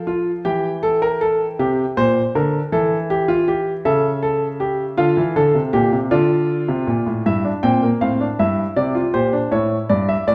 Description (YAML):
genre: classical, baroque-style 3-part fugue for grand piano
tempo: 53 BPM (dotted quarters)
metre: 12/8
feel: straight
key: unclear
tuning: A4 = 440 Hz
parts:
  - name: warm concert grand piano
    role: solo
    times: 0.0-10.3 s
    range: G2 to G5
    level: -19 LUFS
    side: equal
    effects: none
room: wet recital hall reverb, RT60 1.4 s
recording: none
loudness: -19 LUFS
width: mono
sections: 0.0-7.3 A section; 7.3-10.3 B section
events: none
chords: 0.5 Edim; 2.7 A7/E; 5.0 Dm; 7.3 Edim/G; 9.5 A7